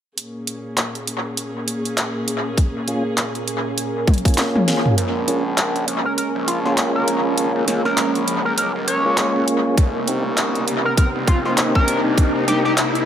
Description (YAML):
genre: glitch hop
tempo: 100 BPM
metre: 4/4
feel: swing 59% on 16ths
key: Bb dorian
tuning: A4 = 440 Hz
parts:
  - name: dark chamber string section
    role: sustained chords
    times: 0.2-13.1 s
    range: Bb2 to Ab4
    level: -26 LUFS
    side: left 1 dB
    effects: sidechain pumping
  - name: drum and bass drum kit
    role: drums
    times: 0.2-13.1 s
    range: handclaps, hi-hat, snare drum, toms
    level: -22 LUFS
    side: equal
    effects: overdrive, studio reverb, analog delay
  - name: deep dark ambient pad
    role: texture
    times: 2.5-13.1 s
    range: Db4 to Bb5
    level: -26 LUFS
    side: right 4 dB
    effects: chorus, built-in reverb, sidechain pumping
  - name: electronic kick drum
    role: drums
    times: 2.6-4.4, 9.8-12.3 s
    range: none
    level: -15 LUFS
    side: equal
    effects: overdrive, studio reverb
  - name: mellow tonewheel organ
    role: stabs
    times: 2.9-12.6 s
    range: Bb3 to Ab4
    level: -23 LUFS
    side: equal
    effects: overdrive, fast rotary speaker, sidechain pumping, analog delay
  - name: gritty driven synth bass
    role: bass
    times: 5.0-13.1 s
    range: Ab1 to Eb2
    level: -27 LUFS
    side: equal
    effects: distortion, high-pass filter
  - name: riser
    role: sound effects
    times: 6.5-13.1 s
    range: none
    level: -26 LUFS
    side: left 2 dB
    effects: none
  - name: sync lead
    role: melody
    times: 6.1-12.7 s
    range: F4 to Db5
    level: -23 LUFS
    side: equal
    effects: chorus, vintage 12-bit sampler grit, analog delay
room: light reverb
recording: echo-heavy mix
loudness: -17 LUFS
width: side -9 dB against mid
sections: 0.2-5.0 A section; 5.0-13.1 B section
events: fade-in on ambient pad 0.2-5.0; drum fill 4.1-5.0; kick drops out 4.4-5.0; build-up 5.0-13.1; filter sweep on analog synth lead 5.0-13.1; riser 6.5-13.1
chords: 0.2 Bbm7; 9.8 Cm7